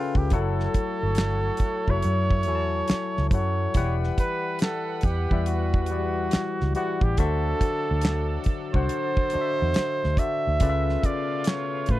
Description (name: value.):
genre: R&B, neo-soul.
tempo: 70 BPM.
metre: 4/4.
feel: swing 63% on 16ths.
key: E dorian.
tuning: A4 = 444 Hz.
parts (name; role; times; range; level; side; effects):
breathy flugelhorn; melody; 0.0-12.0 s; E#4 to E5; -28 LUFS; right 3 dB; slapback echo.
barky tine electric piano; accompaniment; 0.0-12.0 s; C#3 to A5; -30 LUFS; left 8 dB; overdrive.
damped 70s drum kit; drums; 0.1-12.0 s; handclaps, hi-hat, kick drum, snare drum; -24 LUFS; equal; none.
vintage muted fingered electric bass; bass; 0.2-12.0 s; E1 to A2; -26 LUFS; right 1 dB; none.
clear horn section; stabs; 0.3-12.0 s; B2 to F#5; -38 LUFS; right 3 dB; none.
room: little or no reverb.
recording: dry, close 1970s-style studio recording.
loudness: -22 LUFS.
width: side -15 dB against mid.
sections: 0.0-12.0 A section.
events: none.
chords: 0.3 F#m7; 3.7 Em9; 7.2 D7; 10.6 C#7alt.